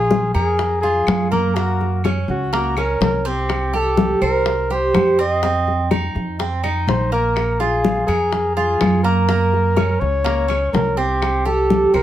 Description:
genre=latin, Cuban son and guajira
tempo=124 BPM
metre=4/4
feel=straight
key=Bb minor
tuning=A4 = 440 Hz
part: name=warm flugelhorn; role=melody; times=0.0-12.0 s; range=Gb4 to Eb5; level=-20 LUFS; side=equal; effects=none
part: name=Cuban tres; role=arpeggios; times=0.0-12.0 s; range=Bb3 to C5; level=-22 LUFS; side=right 2 dB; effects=none
part: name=upright bass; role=bass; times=0.0-12.0 s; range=Bb1 to Gb2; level=-21 LUFS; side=right 1 dB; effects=none
part: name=bongos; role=percussion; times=0.1-12.0 s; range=none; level=-25 LUFS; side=left 5 dB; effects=none
part: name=congas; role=percussion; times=0.1-12.0 s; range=none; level=-24 LUFS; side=left 3 dB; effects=none
part: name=claves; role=percussion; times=0.3-12.0 s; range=none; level=-32 LUFS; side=left 1 dB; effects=none
room=moderate studio ambience, RT60 0.5 s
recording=heard from further back in the room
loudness=-16 LUFS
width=side -12 dB against mid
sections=0.0-12.0 A section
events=none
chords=0.0 Bb5; 1.6 Gb; 3.5 C5; 5.4 F5; 7.4 Bb5; 9.3 Gb; 11.2 C5

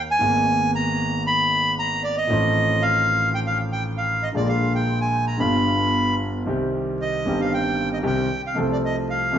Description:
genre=tango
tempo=115 BPM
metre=4/4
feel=rubato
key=unclear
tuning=A4 = 440 Hz
part: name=bandoneon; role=melody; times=0.0-9.4 s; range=D5 to Cb6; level=-22 LUFS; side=right 1 dB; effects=none
part: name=clear concert grand piano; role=accompaniment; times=0.0-9.4 s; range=G1 to A4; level=-22 LUFS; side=equal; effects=none
room=wet stone room reverb, RT60 1.3 s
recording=band playing live in one room, vinyl crackle, nothing above 7.7 kHz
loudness=-19 LUFS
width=side -9 dB against mid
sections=0.0-6.5 A section; 6.5-9.4 B section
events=none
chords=0.2 Abmadd9; 2.3 F7/A; 4.4 Bb7; 5.4 G7; 6.5 Cm; 8.6 F/C

